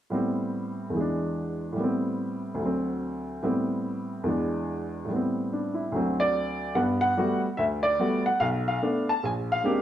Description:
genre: solo jazz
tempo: 145 BPM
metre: 4/4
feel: swing 65% on 8ths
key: G major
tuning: A4 = 440 Hz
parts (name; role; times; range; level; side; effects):
- clear upright piano; solo; 0.1-9.8 s; Bb1 to A5; -25 LUFS; equal; none
room: moderate studio reverb, RT60 1.0 s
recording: heard from further back in the room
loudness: -25 LUFS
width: side -11 dB against mid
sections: 0.1-6.7 A section; 6.7-9.8 B section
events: none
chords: 0.1 Am9; 0.9 E7; 1.8 Am9; 2.6 D7; 3.4 Am9; 4.3 E7; 5.1 Am9; 5.9 D7; 6.7 Gmaj9; 8.4 Bm7b5; 9.2 Bb13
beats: | 0.10 0.52 0.94 1.35 | 1.77 2.18 2.60 3.01 | 3.43 3.84 4.26 4.67 | 5.09 5.50 5.92 6.33 | 6.75 7.16 7.58 7.99 | 8.40 8.82 9.23 9.65

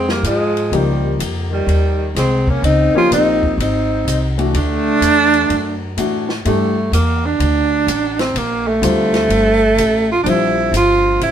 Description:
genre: modal jazz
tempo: 126 BPM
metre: 4/4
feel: swing 66% on 8ths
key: G dorian from 6.4 s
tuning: A4 = 441 Hz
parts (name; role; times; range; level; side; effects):
- mellow tenor saxophone; melody; 0.0-11.3 s; G3 to F4; -16 LUFS; right 2 dB; none
- warm alto saxophone; second line; 0.0-5.9 s; Eb3 to Db4; -23 LUFS; left 3 dB; none
- upright bass; bass; 0.0-11.3 s; G1 to A2; -19 LUFS; equal; none
- compact cocktail drum kit; drums; 0.1-11.3 s; hi-hat, kick drum, ride cymbal, snare drum; -26 LUFS; left 2 dB; none
- warm baby grand piano; accompaniment; 0.7-11.3 s; D3 to G4; -20 LUFS; left 4 dB; none
room: moderate studio reverb, RT60 0.7 s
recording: band playing live in one room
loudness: -13 LUFS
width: side -9 dB against mid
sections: 0.0-6.4 A section; 6.4-11.3 B section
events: none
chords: 0.0 Bbm11; 4.5 D; 6.4 Gm9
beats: 0.24 | 0.72 1.20 1.67 2.15 | 2.63 3.11 3.58 4.06 | 4.54 5.02 5.50 5.97 | 6.45 6.93 7.40 7.88 | 8.36 8.83 9.31 9.78 | 10.26 10.73 11.21

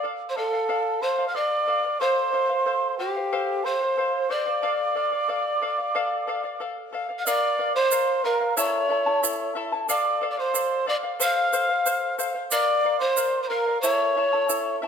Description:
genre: andean folk, Andean ensemble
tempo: 91 BPM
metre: 2/4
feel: straight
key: D minor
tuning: A4 = 443 Hz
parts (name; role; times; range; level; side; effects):
- bright polished pan flute; melody; 0.0-14.8 s; G4 to F5; -25 LUFS; equal; none
- breathy quena; second line; 0.0-14.8 s; G5 to F6; -27 LUFS; right 2 dB; none
- charango; accompaniment; 0.0-14.9 s; E4 to A5; -28 LUFS; left 3 dB; none
- egg shaker; percussion; 7.3-14.6 s; none; -28 LUFS; right 9 dB; none
room: moderate concert hall reverb, RT60 1.9 s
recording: minimal, uncompressed stereo recording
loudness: -22 LUFS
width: side -7 dB against mid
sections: 0.0-7.3 A section; 7.3-14.9 B section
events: none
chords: 0.0 Dm; 2.0 F; 4.6 Dm; 7.3 Bb; 8.6 A; 9.9 Dm; 11.2 F; 12.5 Bb; 13.8 A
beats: 0.04 | 0.69 1.35 | 2.00 2.66 | 3.32 3.98 | 4.63 5.29 | 5.94 6.60 | 7.26 7.91 | 8.57 9.22 | 9.88 10.54 | 11.19 11.85 | 12.51 13.17 | 13.82 14.48

